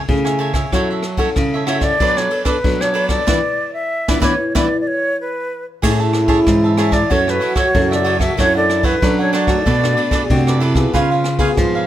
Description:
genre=samba and choro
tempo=94 BPM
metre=4/4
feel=straight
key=A major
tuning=A4 = 441 Hz
part: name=nylon-string guitar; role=accompaniment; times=0.0-11.9 s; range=F#2 to A4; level=-22 LUFS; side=left 5 dB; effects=none
part: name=nylon-string guitar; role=bass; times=0.1-11.9 s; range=F#2 to F#3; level=-20 LUFS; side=right 1 dB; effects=none
part: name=jazz brush drum kit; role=drums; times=0.1-11.7 s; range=crash cymbal, kick drum, ride cymbal, rim click, snare drum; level=-20 LUFS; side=equal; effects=none
part: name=cavaquinho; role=accompaniment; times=0.2-11.9 s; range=D4 to A5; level=-23 LUFS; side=right 4 dB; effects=none
part: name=silver concert flute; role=melody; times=1.7-10.6 s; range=B4 to E5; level=-18 LUFS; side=equal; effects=plate reverb
part: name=mellow trombone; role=second line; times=5.8-11.9 s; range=D4 to G#4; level=-21 LUFS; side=right 2 dB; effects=none
room=moderate studio reverb, RT60 0.5 s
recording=none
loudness=-14 LUFS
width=side -12 dB against mid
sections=0.0-5.8 A section; 5.8-11.9 A section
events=band accent 3.3-5.8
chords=0.0 Amaj7/C#; 0.7 F#m7; 2.0 Bm7/F#; 3.3 E5; 5.8 Amaj7; 7.1 F#m7; 8.4 Dmaj7/F#; 9.7 Bm7; 10.9 C#7

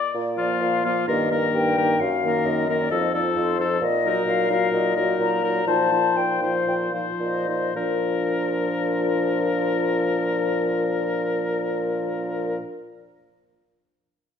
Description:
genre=quick classical-period movement for wind quintet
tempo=105-133 BPM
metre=4/4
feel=rubato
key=Bb major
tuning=A4 = 440 Hz
part: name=warm oboe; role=second line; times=0.0-12.6 s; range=F4 to D5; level=-26 LUFS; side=left 5 dB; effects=none
part: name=mellow concert flute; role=melody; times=0.1-12.6 s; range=Bb4 to Bb5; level=-26 LUFS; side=left 9 dB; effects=none
part: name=mellow bassoon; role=bass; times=0.1-12.6 s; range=F2 to Bb2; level=-26 LUFS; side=right 3 dB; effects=none
part: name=warm French horn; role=accompaniment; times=0.4-12.6 s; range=Eb3 to Gb3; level=-28 LUFS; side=equal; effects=none
part: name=warm clarinet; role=accompaniment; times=0.4-12.6 s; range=Bb3 to Eb4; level=-32 LUFS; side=right 4 dB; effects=none
room=wet recital hall reverb, RT60 1.7 s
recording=none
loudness=-20 LUFS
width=side -7 dB against mid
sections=0.1-7.8 A section; 7.8-12.1 B section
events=slowing down 2.9-7.8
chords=0.1 Bb; 1.1 Eb/G; 2.0 Ebm/Gb; 2.9 F7; 3.8 Ebm/Bb; 5.7 F7/Bb; 7.8 Bb

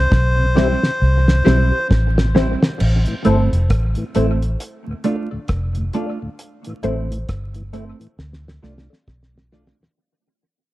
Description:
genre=roots reggae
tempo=67 BPM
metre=4/4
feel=swing 60% on 16ths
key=D dorian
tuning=A4 = 438 Hz
part: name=melodica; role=melody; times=0.0-1.9 s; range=C5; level=-22 LUFS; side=left 1 dB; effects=tape echo
part: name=vintage muted fingered electric bass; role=bass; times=0.0-9.7 s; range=F1 to D2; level=-17 LUFS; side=equal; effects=none
part: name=cloth-damped thuddy drum kit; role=drums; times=0.1-10.0 s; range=crash cymbal, hi-hat, kick drum, rim click, snare drum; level=-19 LUFS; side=equal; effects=dub echo
part: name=mellow tonewheel organ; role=accompaniment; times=0.4-9.9 s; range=D2 to F4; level=-28 LUFS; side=left 2 dB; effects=overdrive, chorus vibrato, slow rotary speaker
part: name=mellow electric guitar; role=accompaniment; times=0.6-9.8 s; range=G3 to F4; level=-23 LUFS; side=right 4 dB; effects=tape echo
part: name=filtered dub chord stab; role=stabs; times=0.6-9.7 s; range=E4 to D5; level=-26 LUFS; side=left 5 dB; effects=phaser
room=light reverb, small room ambience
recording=dark, warm production, vinyl crackle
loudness=-16 LUFS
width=side -17 dB against mid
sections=0.0-2.8 A section; 2.8-10.0 B section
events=drum fill 0.0-2.8, 8.2-10.0; fade-out 2.8-10.0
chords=0.0 C; 2.8 Am; 4.6 Dm; 6.4 Am; 8.2 Dm

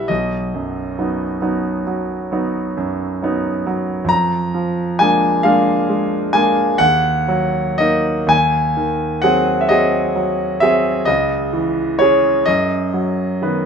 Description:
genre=classical, romantic nocturne for solo piano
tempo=44 BPM (dotted quarters)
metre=9/8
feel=uneven beats, rubato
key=B major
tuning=A4 = 440 Hz
part: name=clear concert grand piano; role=solo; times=0.0-13.7 s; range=B1 to A#5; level=-15 LUFS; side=equal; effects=none
room=moderate large studio reverb, RT60 1.2 s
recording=none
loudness=-15 LUFS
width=side -6 dB against mid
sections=0.0-13.7 A section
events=none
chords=0.1 B; 4.1 A#7/E#; 6.8 D#m; 8.3 G#7/D#; 11.1 C#m; 12.5 B/F#

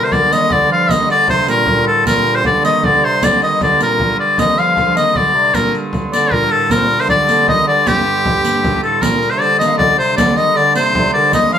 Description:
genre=medieval dance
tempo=104 BPM (dotted quarters)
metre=6/8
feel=straight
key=G minor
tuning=A4 = 440 Hz
part: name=bright shawm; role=melody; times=0.0-11.6 s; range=G4 to F5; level=-13 LUFS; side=left 2 dB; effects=none
part: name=clear bass clarinet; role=second line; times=0.0-11.6 s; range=G2 to F3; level=-22 LUFS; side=right 4 dB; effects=none
part: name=mellow tenor recorder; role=second line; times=0.0-11.6 s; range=G4 to F5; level=-23 LUFS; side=left 5 dB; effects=none
part: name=rich hurdy-gurdy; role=drone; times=0.0-11.6 s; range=G2 to D3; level=-22 LUFS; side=right 3 dB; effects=none
part: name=frame drum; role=percussion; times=0.1-11.5 s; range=none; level=-22 LUFS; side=equal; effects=none
part: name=riq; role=percussion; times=0.1-11.6 s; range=none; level=-22 LUFS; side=right 3 dB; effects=none
room=wet studio reverb, RT60 0.6 s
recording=band playing live in one room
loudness=-11 LUFS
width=side -8 dB against mid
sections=0.0-9.0 A section; 9.0-11.6 A section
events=none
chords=none

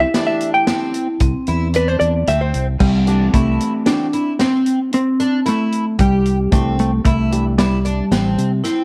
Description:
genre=progressive instrumental, band music in an uneven meter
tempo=113 BPM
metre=7/4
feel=straight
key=C major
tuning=A4 = 440 Hz
part: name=hollow-body jazz guitar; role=melody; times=0.0-8.6 s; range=G3 to G5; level=-19 LUFS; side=equal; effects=none
part: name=vibraphone with soft mallets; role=second line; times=0.0-8.8 s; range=C4 to E4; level=-28 LUFS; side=equal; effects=none
part: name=fingerpicked twelve-string acoustic guitar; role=arpeggios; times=0.0-8.8 s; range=C4 to G4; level=-28 LUFS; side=equal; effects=none
part: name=fingered electric bass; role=bass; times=0.0-8.6 s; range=A1 to C3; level=-22 LUFS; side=equal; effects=none
part: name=dark grand piano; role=accompaniment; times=0.1-7.5 s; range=E3 to G4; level=-30 LUFS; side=equal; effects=none
part: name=vintage drum kit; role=drums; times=0.1-8.8 s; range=crash cymbal, hi-hat, kick drum, snare drum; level=-23 LUFS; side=equal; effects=none
room=light reverb, studio ambience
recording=none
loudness=-17 LUFS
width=mono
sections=0.0-2.8 A section; 2.8-8.8 B section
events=hollow-body jazz guitar solo 0.0-2.8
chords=0.0 C; 2.8 C6

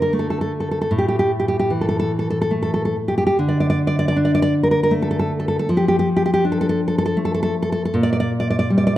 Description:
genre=romantic piece for solo classical guitar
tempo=68-82 BPM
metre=3/4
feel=rubato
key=D minor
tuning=A4 = 441 Hz
part: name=nylon-string guitar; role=solo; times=0.0-9.0 s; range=A2 to D5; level=-17 LUFS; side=equal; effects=none
room=moderate scoring stage reverb, RT60 1.9 s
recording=dark, warm production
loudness=-17 LUFS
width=side -14 dB against mid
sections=0.0-9.0 A section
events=none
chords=0.0 D5; 0.9 A5; 3.4 D5; 5.7 Dm/F; 7.9 Gm/Bb

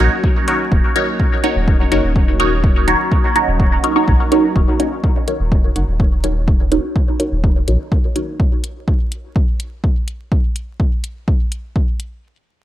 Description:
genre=dub techno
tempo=125 BPM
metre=4/4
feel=straight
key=Eb minor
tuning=A4 = 440 Hz
part: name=warbly tape-like pad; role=sustained chords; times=0.0-4.5 s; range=Gb3 to Gb4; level=-26 LUFS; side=left 1 dB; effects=chorus, built-in reverb, sidechain pumping
part: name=wavetable chord stab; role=riff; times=0.0-5.9 s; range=Eb4 to Gb5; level=-32 LUFS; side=right 1 dB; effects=none
part: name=filtered dub chord stab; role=stabs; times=0.0-8.4 s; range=Eb4 to Db5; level=-18 LUFS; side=right 1 dB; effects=phaser, sidechain pumping, dub echo
part: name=warm sub bass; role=bass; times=0.0-7.8 s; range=Eb1 to Bb1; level=-18 LUFS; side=equal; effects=sidechain pumping
part: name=electronic hi-hat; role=drums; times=0.0-12.1 s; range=none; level=-27 LUFS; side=left 2 dB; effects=none
part: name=electronic kick drum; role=drums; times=0.2-11.9 s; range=none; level=-16 LUFS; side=equal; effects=none
room=light reverb, digital ambience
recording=vinyl crackle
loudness=-14 LUFS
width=side -13 dB against mid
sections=0.0-4.6 A section; 4.6-12.2 B section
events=filter sweep on synth stab 4.6-8.4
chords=0.0 Ebm7

